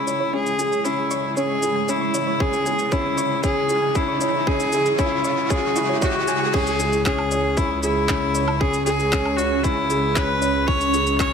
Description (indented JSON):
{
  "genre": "piano and strings electronica",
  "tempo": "116 BPM",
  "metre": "4/4",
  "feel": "straight",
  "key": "C# minor",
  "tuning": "A4 = 440 Hz",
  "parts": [
    { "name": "clear viola", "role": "melody", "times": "0.0-11.3 s", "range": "E4 to C#5", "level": "-22 LUFS", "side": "left 2 dB", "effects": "shimmer reverb" },
    { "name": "granular cloud pad", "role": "sustained chords", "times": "0.0-11.3 s", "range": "C#3 to C#5", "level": "-29 LUFS", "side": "right 3 dB", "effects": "built-in reverb, sidechain pumping, shimmer reverb" },
    { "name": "felt-muted upright piano", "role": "riff", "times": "0.0-11.3 s", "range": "C#4 to G#5", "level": "-25 LUFS", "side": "left 1 dB", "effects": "shimmer reverb" },
    { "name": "riser", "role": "sound effects", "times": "0.6-6.5 s", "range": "none", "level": "-30 LUFS", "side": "equal", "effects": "none" },
    { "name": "deep house drum kit", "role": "drums", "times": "0.1-11.3 s", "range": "crash cymbal, handclaps, shaker, woodblock", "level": "-29 LUFS", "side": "left 1 dB", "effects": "none" },
    { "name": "soft round pluck", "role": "arpeggios", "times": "0.2-6.5 s", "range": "C#5 to C#6", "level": "-34 LUFS", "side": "right 5 dB", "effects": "none" },
    { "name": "electronic kick drum", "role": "drums", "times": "2.4-11.3 s", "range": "none", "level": "-25 LUFS", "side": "right 1 dB", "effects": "overdrive" },
    { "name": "clear chamber double bass section", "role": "bass", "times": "6.5-11.3 s", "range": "C#2", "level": "-26 LUFS", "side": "right 1 dB", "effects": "sidechain pumping" }
  ],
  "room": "moderate lush hall reverb, RT60 1.7 s",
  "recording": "none",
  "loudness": "-18 LUFS",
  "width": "side -6 dB against mid",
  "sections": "0.0-6.5 A section; 6.5-11.3 B section",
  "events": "build-up 0.0-6.5; riser 0.6-6.5; drop 6.5-11.3",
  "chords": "0.0 C#m"
}